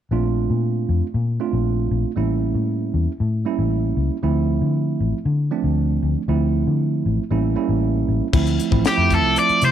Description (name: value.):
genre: straight-eighth soul blues.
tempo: 117 BPM.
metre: 4/4.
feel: straight.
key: D minor.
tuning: A4 = 439 Hz.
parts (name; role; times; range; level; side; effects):
tine electric piano; accompaniment; 0.1-9.7 s; F3 to F4; -23 LUFS; right 9 dB; none.
vintage muted fingered electric bass; bass; 0.1-9.7 s; A1 to D3; -20 LUFS; left 2 dB; none.
tight funk drum kit; drums; 8.3-9.7 s; crash cymbal, hi-hat, kick drum, snare drum; -22 LUFS; left 5 dB; none.
cranked stack guitar; melody; 8.9-9.7 s; G4 to D5; -16 LUFS; left 2 dB; overdrive.
room: light reverb, small room ambience.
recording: 1960s-style stereo.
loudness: -18 LUFS.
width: side -10 dB against mid.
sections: 0.1-8.3 A section; 8.3-9.7 B section.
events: none.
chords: 0.1 Bbmaj7; 2.2 A7b9; 4.2 Dm7; 7.3 A7b9; 8.3 Dm7.